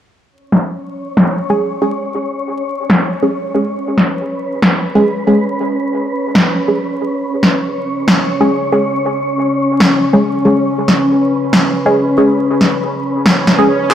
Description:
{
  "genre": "deep dubstep",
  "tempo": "139 BPM",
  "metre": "4/4",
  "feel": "half-time",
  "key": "unclear",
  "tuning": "A4 = 440 Hz",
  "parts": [
    { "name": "wind-like tuned noise texture", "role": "texture", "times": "0.7-13.9 s", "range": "C#4 to C#5", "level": "-19 LUFS", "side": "equal", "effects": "built-in reverb" },
    { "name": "electronic snare drum and handclaps", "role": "drums", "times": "0.5-13.9 s", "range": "none", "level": "-13 LUFS", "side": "equal", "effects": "overdrive, low-pass filter on snare, low-pass filter on room" },
    { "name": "filtered dub chord stab", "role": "stabs", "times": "1.5-13.9 s", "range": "G#3 to G#4", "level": "-15 LUFS", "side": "equal", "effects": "phaser, dub echo" },
    { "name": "dark analog pad", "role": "sustained chords", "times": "8.4-13.9 s", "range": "C#4", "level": "-17 LUFS", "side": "left 1 dB", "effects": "chorus" },
    { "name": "swell", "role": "sound effects", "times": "13.4-13.9 s", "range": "none", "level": "-18 LUFS", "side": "right 6 dB", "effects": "none" }
  ],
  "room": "moderate echo chamber reverb, RT60 1.7 s",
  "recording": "vinyl crackle",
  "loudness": "-12 LUFS",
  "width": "side -10 dB against mid",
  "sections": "0.3-13.9 A section",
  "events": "filter sweep on drum 0.3-13.9; filter sweep on synth stab 0.3-13.9; swell 13.4-13.9",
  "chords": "0.3 C#5"
}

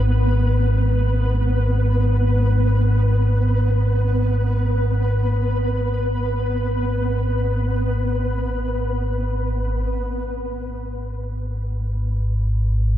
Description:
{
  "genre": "dark ambient drone",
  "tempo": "free time",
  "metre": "none",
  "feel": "none",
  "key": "G# minor",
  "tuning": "A4 = 440 Hz",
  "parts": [
    { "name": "deep rumbling drone", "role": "drone", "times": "0.0-13.0 s", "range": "G#1 to G#2", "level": "-19 LUFS", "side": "equal", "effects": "built-in reverb, wide subtle chorus" },
    { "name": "flickering grainy texture", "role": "texture", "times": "0.0-9.9 s", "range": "B3 to B4", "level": "-25 LUFS", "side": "equal", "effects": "built-in reverb" }
  ],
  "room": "moderate huge ambient reverb, RT60 8.1 s",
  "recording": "dark, warm production",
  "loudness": "-18 LUFS",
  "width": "side -12 dB against mid",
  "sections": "0.0-9.9 A section; 9.9-13.0 B section",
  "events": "none",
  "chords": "0.0 G#m"
}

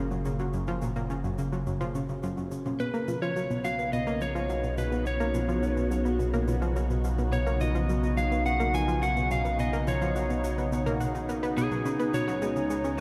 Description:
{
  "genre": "ambient, sequencer-driven space music",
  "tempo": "106 BPM",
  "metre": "4/4",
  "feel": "straight",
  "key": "unclear",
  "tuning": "A4 = 436 Hz",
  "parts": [
    { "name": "phased analog pad", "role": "sustained chords", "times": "0.0-13.0 s", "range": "C#3 to G#4", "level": "-35 LUFS", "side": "equal", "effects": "phaser, chorus, shimmer reverb" },
    { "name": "analog pluck", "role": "riff", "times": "0.0-12.9 s", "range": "F#2 to F#4", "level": "-34 LUFS", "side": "equal", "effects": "chorus, shimmer reverb, delay" },
    { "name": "round analog bass", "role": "bass", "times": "0.0-13.0 s", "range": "F#1 to C#2", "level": "-34 LUFS", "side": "equal", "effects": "none" },
    { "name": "electronic cabasa and toms", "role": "percussion", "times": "0.1-13.0 s", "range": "none", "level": "-42 LUFS", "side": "equal", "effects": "none" },
    { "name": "lightly driven lead guitar", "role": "melody", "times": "2.8-13.0 s", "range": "G#4 to G#5", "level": "-34 LUFS", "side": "equal", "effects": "shimmer reverb, delay" }
  ],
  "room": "wet cathedral reverb, RT60 4.9 s",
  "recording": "in a vast, echoing space",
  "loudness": "-28 LUFS",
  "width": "mono",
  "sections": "0.0-13.0 A section",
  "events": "fade-in on drum 0.0-13.0",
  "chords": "0.0 F#add9; 2.8 Badd9; 11.9 C#sus2"
}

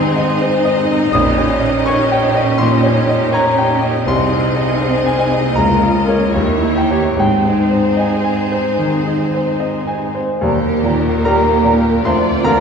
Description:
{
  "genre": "classical, romantic movement for piano and orchestra",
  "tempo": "71-83 BPM",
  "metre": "4/4",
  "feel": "rubato",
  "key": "Ab major",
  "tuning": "A4 = 435 Hz",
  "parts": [
    { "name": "bright grand piano", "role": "melody", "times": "0.0-12.6 s", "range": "Bb1 to Eb6", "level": "-15 LUFS", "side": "left 1 dB", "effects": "none" },
    { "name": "clear symphonic violin section", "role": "second line", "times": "0.0-12.6 s", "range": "F4 to Eb5", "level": "-24 LUFS", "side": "left 2 dB", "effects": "none" },
    { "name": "warm symphonic viola section", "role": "accompaniment", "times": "0.0-12.6 s", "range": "F3 to F4", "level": "-20 LUFS", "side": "right 2 dB", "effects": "none" },
    { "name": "clear symphonic cello section", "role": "bass", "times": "0.0-12.6 s", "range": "Ab2 to Eb3", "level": "-22 LUFS", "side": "right 3 dB", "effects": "none" },
    { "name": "rich symphonic double bass section", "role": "bass", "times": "1.1-12.6 s", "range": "Ab1 to Eb2", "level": "-25 LUFS", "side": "right 2 dB", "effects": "none" },
    { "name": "warm symphonic violin section", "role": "melody", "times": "10.4-12.6 s", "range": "Bb4 to D5", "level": "-24 LUFS", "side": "left 3 dB", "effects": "none" },
    { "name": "mellow large flute ensemble", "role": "second line", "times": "10.4-12.6 s", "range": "Bb5", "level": "-24 LUFS", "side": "right 3 dB", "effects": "none" },
    { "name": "mellow bassoon", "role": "accompaniment", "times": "10.4-12.6 s", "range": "F3 to G3", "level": "-23 LUFS", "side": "right 1 dB", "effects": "none" },
    { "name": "timpani", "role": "percussion", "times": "10.4-11.6 s", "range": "Eb3", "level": "-26 LUFS", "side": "right 1 dB", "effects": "none" },
    { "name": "mellow French horn section", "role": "sustained chords", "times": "11.3-12.6 s", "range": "Bb3 to C4", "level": "-20 LUFS", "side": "right 2 dB", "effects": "none" }
  ],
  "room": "wet concert hall reverb, RT60 2.3 s",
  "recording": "recorded in a church or concert hall",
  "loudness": "-12 LUFS",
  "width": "side -6 dB against mid",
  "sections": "0.0-10.4 A section; 10.4-12.6 B section",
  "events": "none",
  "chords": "0.0 Ab; 1.1 Eb7/Bb; 4.1 Ab/C; 5.6 Bbm/Db; 6.4 Eb7b9; 7.2 Ab; 10.4 Eb; 12.1 Bb/D"
}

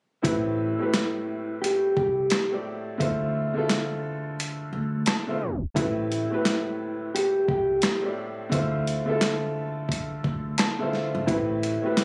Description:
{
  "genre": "hip hop, boom-bap hip-hop",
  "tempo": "87 BPM",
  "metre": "4/4",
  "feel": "swing 62% on 16ths",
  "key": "A minor",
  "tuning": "A4 = 439 Hz",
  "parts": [
    { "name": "mellow electric guitar", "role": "melody", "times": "0.2-12.0 s", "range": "E4 to G4", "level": "-28 LUFS", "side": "equal", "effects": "high-pass filter, low-pass filter, slapback echo" },
    { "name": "bright upright piano", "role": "accompaniment", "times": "0.2-12.0 s", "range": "A2 to A5", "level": "-31 LUFS", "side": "equal", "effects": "cassette tape, high-pass filter, low-pass filter" },
    { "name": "upright bass", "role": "bass", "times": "0.2-11.8 s", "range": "G#1 to D2", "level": "-33 LUFS", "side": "equal", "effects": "none" },
    { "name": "boom bap sampler-style drum kit", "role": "drums", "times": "0.2-12.0 s", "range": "handclaps, hi-hat, kick drum, snare drum", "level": "-29 LUFS", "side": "equal", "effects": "none" }
  ],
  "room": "little or no reverb",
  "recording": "recorded on a phone in the room, studio reverb, tape stop",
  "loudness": "-26 LUFS",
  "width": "mono",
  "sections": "0.2-5.8 A section; 5.8-12.0 B section",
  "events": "kick muted 4.4-5.8; upright piano fill 4.7-5.8; tape stop 5.4-5.8",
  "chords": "0.2 Am7; 3.0 Dm7; 5.8 Am7; 8.5 Dm7; 11.3 Am7"
}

